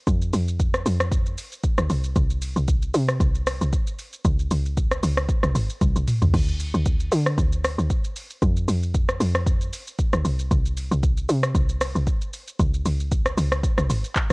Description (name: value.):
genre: amapiano.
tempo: 115 BPM.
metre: 4/4.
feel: swing 55% on 16ths.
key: unclear.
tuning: A4 = 440 Hz.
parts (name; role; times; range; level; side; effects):
woody log drum bass; bass; 0.1-14.3 s; G#1 to D3; -23 LUFS; equal; none.
afro-pop drum kit; drums; 0.1-14.3 s; crash cymbal, handclaps, hi-hat, kick drum, rim click, shaker, toms; -23 LUFS; equal; none.
room: little or no reverb.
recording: worn, warbling old tape, cassette tape, warbly pitch drift.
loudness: -20 LUFS.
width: side -29 dB against mid.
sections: 0.0-14.3 A section.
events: drum fill 5.8-6.3.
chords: none.